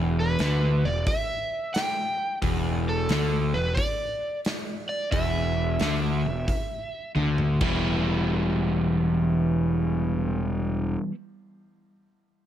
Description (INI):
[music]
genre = blues rock power trio and southern rock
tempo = 89 BPM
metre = 4/4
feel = swing 67% on 8ths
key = E minor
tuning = A4 = 441 Hz
[part]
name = overdriven semi-hollow guitar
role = riff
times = 0.0-11.1 s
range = E2 to E4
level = -25 LUFS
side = equal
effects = none
[part]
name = fuzz picked electric bass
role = bass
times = 0.0-11.0 s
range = E1 to D2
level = -28 LUFS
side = equal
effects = overdrive
[part]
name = overdriven slide guitar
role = melody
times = 0.2-7.1 s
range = A4 to G5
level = -29 LUFS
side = right 1 dB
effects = none
[part]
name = big rock drum kit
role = drums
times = 0.4-7.7 s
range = crash cymbal, hi-hat, kick drum, snare drum, toms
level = -31 LUFS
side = equal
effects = none
[sound]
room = studio reverb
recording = none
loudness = -23 LUFS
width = side -11 dB against mid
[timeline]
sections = 0.0-7.8 A section; 7.8-10.6 B section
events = drum fill 7.2-7.8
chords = 0.0 N.C.; 7.8 Em